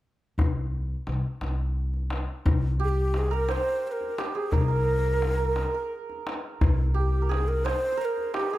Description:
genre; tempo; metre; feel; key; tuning
Persian modal ensemble; 58 BPM (dotted quarters); 6/8; straight; unclear; A4 = 440 Hz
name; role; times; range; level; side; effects
upright bass; bass; 0.4-7.7 s; C2; -26 LUFS; equal; none
tombak; percussion; 0.4-8.5 s; none; -28 LUFS; left 2 dB; none
breathy ney; melody; 2.8-8.6 s; G4 to Db5; -28 LUFS; equal; none
santur; second line; 2.8-8.6 s; G4 to C5; -32 LUFS; right 8 dB; none
room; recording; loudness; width
little or no reverb; close, detailed microphones; -24 LUFS; side -15 dB against mid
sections
0.4-2.5 A section; 2.5-8.6 B section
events
none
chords
none

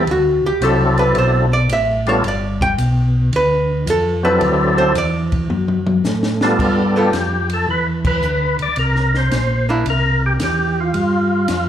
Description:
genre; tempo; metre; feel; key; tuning
soul jazz organ trio; 110 BPM; 4/4; swing 68% on 8ths; G mixolydian; A4 = 441 Hz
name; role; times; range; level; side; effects
percussive tonewheel organ; melody; 0.0-11.7 s; F#3 to D5; -18 LUFS; left 1 dB; slow rotary speaker, overdrive, chorus vibrato, slapback echo
archtop guitar, miked and amplified; accompaniment; 0.0-9.9 s; G3 to G5; -18 LUFS; right 1 dB; slapback echo
tonewheel organ; bass; 0.0-11.7 s; G1 to A2; -18 LUFS; equal; chorus vibrato
compact cocktail drum kit; drums; 0.1-11.7 s; crash cymbal, hi-hat, kick drum, ride cymbal, snare drum, toms; -26 LUFS; left 1 dB; none
room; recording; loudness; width
light reverb, studio reverb; live gig heard through the venue's PA, club reverb; -14 LUFS; side -10 dB against mid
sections
0.0-6.6 A section; 6.6-11.7 B section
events
hollow-body jazz guitar solo 0.0-6.6; drum fill 5.5-6.6; band accent 8.0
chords
0.1 D9; 2.2 G9; 4.4 D9; 6.6 G9; 8.8 C7; 11.0 G7(no3)

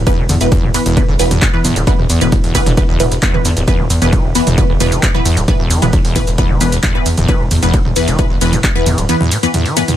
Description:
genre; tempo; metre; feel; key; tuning
driving peak-time techno; 133 BPM; 4/4; straight; unclear; A4 = 440 Hz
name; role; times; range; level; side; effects
gritty driven synth bass; bass; 0.0-9.1 s; D1 to E2; -17 LUFS; equal; sidechain pumping
acid bass, saw; riff; 0.1-9.9 s; E2 to E3; -19 LUFS; equal; lush chorus, sidechain pumping, dub echo
filtered dub chord stab; stabs; 0.1-10.0 s; E3 to B4; -18 LUFS; equal; phaser, sidechain pumping, dub echo
electronic kick drum; drums; 0.1-8.7 s; none; -14 LUFS; equal; none
punchy analog drum machine; drums; 0.1-10.0 s; handclaps, hi-hat, ride cymbal, shaker, toms; -18 LUFS; right 1 dB; sidechain pumping on hats, sidechain pumping on cymbals, sidechain pumping on perc, sidechain pumping on toms
room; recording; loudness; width
digital ambience; none; -11 LUFS; side -11 dB against mid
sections
0.0-10.0 A section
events
none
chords
0.0 E5

